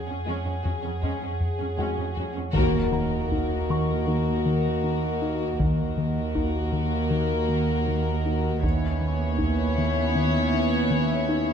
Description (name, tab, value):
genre	cinematic, suspense film score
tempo	79 BPM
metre	4/4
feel	straight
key	Eb phrygian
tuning	A4 = 440 Hz
part	warm studio violin section	melody	0.0-11.5 s	Ab4 to Db5	-32 LUFS	left 4 dB	none
part	glass harmonica	sustained chords	0.0-11.5 s	Ab4 to Ab5	-36 LUFS	right 1 dB	none
part	plucky analog bass	riff	0.0-11.5 s	F2 to Eb4	-29 LUFS	left 2 dB	none
part	deep rumbling drone	drone	0.0-11.5 s	Eb2 to F2	-32 LUFS	right 2 dB	built-in reverb, phaser
part	felt-muted upright piano	texture	0.0-8.7 s	Db4 to Db6	-38 LUFS	left 2 dB	none
part	rich studio violin section	second line	0.1-11.5 s	Ab3 to Gb4	-34 LUFS	left 6 dB	none
part	warm studio viola section	accompaniment	0.1-11.5 s	Bb3 to Db4	-34 LUFS	right 1 dB	none
part	warm studio cello section	bass	0.1-11.5 s	Eb2 to F2	-32 LUFS	right 4 dB	none
part	warm studio double bass section	bass	2.5-11.5 s	Eb2	-31 LUFS	right 4 dB	none
part	solo taiko drums	drums	2.5-10.1 s	none	-30 LUFS	right 1 dB	none
part	impact	sound effects	2.5-5.6 s	none	-33 LUFS	right 1 dB	none
part	dark French horn section	sustained chords	2.6-11.5 s	Bb3 to Gb4	-33 LUFS	left 4 dB	none
room	moderate scoring stage reverb, RT60 1.7 s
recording	dark, warm production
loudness	-22 LUFS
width	side -7 dB against mid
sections	0.0-2.6 A section; 2.6-11.5 B section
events	band accent 2.6-3.3; impact 2.6-5.6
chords	0.0 Gbsus2/F; 2.6 Ebm; 8.6 Dbm7/Eb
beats	0.28 1.04 1.79 | 2.56 3.31 4.07 4.83 | 5.59 6.35 7.11 7.87 | 8.63 9.39 10.15 10.91